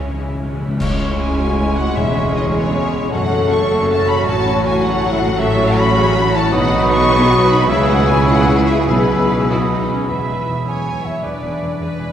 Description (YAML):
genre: classical, dramatic, fast romantic movement for symphony orchestra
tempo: 104 BPM (dotted quarters)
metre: 6/8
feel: rubato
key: C# minor, E major from 5.4 s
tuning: A4 = 440 Hz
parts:
  - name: rich studio violin section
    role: melody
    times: 0.0-12.1 s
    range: G#4 to C#6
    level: -23 LUFS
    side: left 3 dB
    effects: none
  - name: clear studio violin section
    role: second line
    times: 0.0-12.1 s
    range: C#4 to G#5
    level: -26 LUFS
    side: left 2 dB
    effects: none
  - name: bright symphonic viola section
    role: accompaniment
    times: 0.0-12.1 s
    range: E3 to E5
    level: -25 LUFS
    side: equal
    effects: none
  - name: concert harp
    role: arpeggios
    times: 0.0-12.1 s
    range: E2 to B4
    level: -25 LUFS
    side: left 4 dB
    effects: none
  - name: bright symphonic cello section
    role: bass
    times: 0.0-12.1 s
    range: C#2 to C#3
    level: -24 LUFS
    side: right 2 dB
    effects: none
  - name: rich symphonic double bass section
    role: bass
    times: 0.0-12.1 s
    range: E1 to C#2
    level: -23 LUFS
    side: right 1 dB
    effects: none
  - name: timpani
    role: percussion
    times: 0.0-2.5, 6.5-9.5 s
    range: E2 to C#3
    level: -29 LUFS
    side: left 1 dB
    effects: none
  - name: clear clarinet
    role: second line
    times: 0.8-9.9 s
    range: E4 to G#4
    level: -26 LUFS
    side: equal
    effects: none
  - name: concert flute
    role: second line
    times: 0.8-9.9 s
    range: C#6 to E6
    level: -25 LUFS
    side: right 2 dB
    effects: none
  - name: dark cor anglais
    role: second line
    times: 0.8-12.1 s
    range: B4 to G#5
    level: -25 LUFS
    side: right 2 dB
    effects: none
  - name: mellow bassoon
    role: accompaniment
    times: 0.8-9.9 s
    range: B2 to A3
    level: -25 LUFS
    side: right 2 dB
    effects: none
  - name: mellow tuba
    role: bass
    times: 0.8-9.9 s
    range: E1 to C#2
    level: -25 LUFS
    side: right 1 dB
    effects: none
  - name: clash cymbals and concert bass drum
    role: percussion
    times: 0.8-1.5 s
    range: none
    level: -28 LUFS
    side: equal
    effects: none
  - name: warm French horn section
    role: sustained chords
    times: 1.4-12.1 s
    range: B3 to A4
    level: -22 LUFS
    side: left 2 dB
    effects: none
room: wet cathedral reverb, RT60 5.4 s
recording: recorded in a church or concert hall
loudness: -13 LUFS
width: side -9 dB against mid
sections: 0.8-10.1 A section; 10.1-12.1 B section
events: timpani fill 0.0-0.8; band accent 0.8-1.2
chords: 0.0 C#m; 2.0 C#m/E; 3.1 F#m; 4.3 F#m/A; 5.4 F#m7/A; 6.5 B; 7.7 C#m7; 8.9 E/B; 9.5 B; 10.1 E